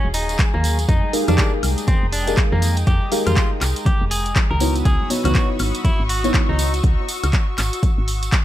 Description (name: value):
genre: deep house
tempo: 121 BPM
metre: 4/4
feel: swing 60% on 16ths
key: unclear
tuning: A4 = 438 Hz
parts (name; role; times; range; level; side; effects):
- clean electric guitar; melody; 0.0-6.7 s; Bb3 to Bb4; -27 LUFS; equal; ping-pong delay
- warm analog pad; sustained chords; 0.0-8.4 s; Gb3 to Fb6; -32 LUFS; left 1 dB; chorus, sidechain pumping
- deep mellow chord stab; stabs; 0.0-7.1 s; Cb4 to F5; -24 LUFS; equal; chorus, sidechain pumping, ping-pong delay
- woody FM bass; bass; 0.0-8.3 s; Eb1 to F2; -21 LUFS; equal; sidechain pumping
- dark studio violin section; texture; 0.0-8.4 s; Ab4 to Db6; -34 LUFS; left 2 dB; sidechain pumping
- punchy analog drum machine; drums; 0.1-8.4 s; handclaps, hi-hat, woodblock; -26 LUFS; equal; none
- tambourine; percussion; 0.1-8.4 s; none; -31 LUFS; right 2 dB; none
- electronic kick drum; drums; 0.4-8.4 s; none; -18 LUFS; equal; overdrive
- congas; percussion; 0.4-6.6 s; none; -30 LUFS; left 2 dB; none
room: digital ambience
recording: none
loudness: -16 LUFS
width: side -13 dB against mid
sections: 0.0-8.4 A section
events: none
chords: 0.0 Ebm11; 0.9 Fm11; 4.6 Dbm11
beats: 0.39 | 0.89 1.38 1.88 2.38 | 2.87 3.37 3.86 4.36 | 4.85 5.35 5.85 6.34 | 6.84 7.33 7.83 8.32